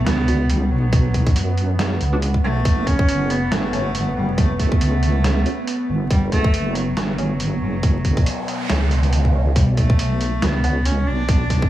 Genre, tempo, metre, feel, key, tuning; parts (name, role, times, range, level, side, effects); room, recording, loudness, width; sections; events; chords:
deep dubstep; 139 BPM; 4/4; swing 57% on 16ths, half-time; B minor; A4 = 440 Hz
rich cello; melody; 0.0-11.7 s; F#3 to D4; -25 LUFS; equal; dub echo
deep dark ambient pad; sustained chords; 0.0-11.7 s; B3; -28 LUFS; right 2 dB; chorus, built-in reverb
deep soft wobble bass; bass; 0.0-11.7 s; F#1 to F#2; -20 LUFS; equal; chorus
filtered dub chord stab; stabs; 0.1-10.7 s; F#3 to F#4; -32 LUFS; right 2 dB
trip hop sampler-style drum kit; drums; 0.1-11.6 s; hi-hat, snare drum; -27 LUFS; right 1 dB
electronic kick drum; drums; 0.9-11.7 s; -17 LUFS; equal
noise sweep; sound effects; 8.1-9.6 s; -29 LUFS; right 2 dB
light reverb; vinyl crackle, small room ambience; -17 LUFS; side -14 dB against mid
0.0-11.7 A section
noise sweep 8.1-9.6
0.0 Bm; 2.7 F#m; 9.6 Bm